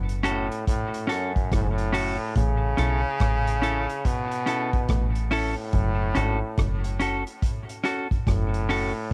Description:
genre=roots reggae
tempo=71 BPM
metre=4/4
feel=swing 63% on 16ths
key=unclear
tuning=A4 = 441 Hz
part: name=deep dub fingered electric bass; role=bass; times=0.0-8.9 s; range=F#1 to B1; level=-28 LUFS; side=equal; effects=none
part: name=vintage drum kit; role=drums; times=0.1-9.1 s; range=hi-hat, kick drum, rim click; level=-30 LUFS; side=equal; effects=cassette tape
part: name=semi-hollow electric guitar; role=accompaniment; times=0.2-8.9 s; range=C#4 to A4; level=-31 LUFS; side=equal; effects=cassette tape, tape echo
part: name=brilliant trombone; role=melody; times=0.3-9.1 s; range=F#2 to C#3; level=-32 LUFS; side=equal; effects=cassette tape, tape echo
room=studio ambience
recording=home recording on cassette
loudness=-25 LUFS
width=mono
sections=0.0-9.1 A section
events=none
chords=0.0 F#m; 2.4 A; 5.7 F#m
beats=0.67 1.52 | 2.36 3.20 4.05 4.89 | 5.73 6.58 7.42 8.26 | 9.11

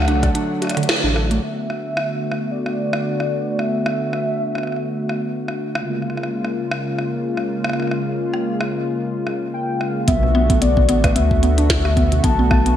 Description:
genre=IDM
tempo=111 BPM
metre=4/4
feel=swing 56% on 16ths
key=unclear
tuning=A4 = 440 Hz
part: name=warm velvety synth lead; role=melody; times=0.0-5.5, 9.5-12.8 s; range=D5 to A5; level=-25 LUFS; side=left 1 dB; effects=chorus, ping-pong delay
part: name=warm analog pad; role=sustained chords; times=0.0-12.8 s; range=C#3 to F#4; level=-22 LUFS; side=left 1 dB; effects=chorus
part: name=mallet-like synth pluck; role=arpeggios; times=0.0-1.4, 10.1-12.7 s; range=B2 to D5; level=-22 LUFS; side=right 2 dB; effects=chorus, diffuse ambient delay
part: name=warm sub bass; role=bass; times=0.0-1.4, 10.1-12.8 s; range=A1 to D2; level=-18 LUFS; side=equal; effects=none
part: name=glitchy drum kit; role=drums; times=0.0-12.8 s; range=hi-hat, rim click, snare drum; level=-25 LUFS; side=equal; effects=studio reverb, diffuse ambient delay
part: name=electronic kick drum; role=drums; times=0.2-0.3, 10.1-12.6 s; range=none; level=-20 LUFS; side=equal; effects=studio reverb
room=moderate plate reverb, RT60 1.7 s, digital ambience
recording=dreamy mix soaked in reverb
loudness=-17 LUFS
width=side -10 dB against mid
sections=0.0-1.4 A section; 1.4-10.1 B section; 10.1-12.8 A section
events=break 0.3-1.4; band accent 0.9; filter sweep on analog synth pad 1.4-10.1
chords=0.0 D; 1.4 Bm7; 5.8 C#6; 10.1 Bm7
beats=0.35 0.89 | 1.43 1.97 2.51 3.05 | 3.59 4.13 4.67 5.21 | 5.75 6.29 6.83 7.38 | 7.92 8.46 9.00 9.54 | 10.08 10.62 11.16 11.70 | 12.24

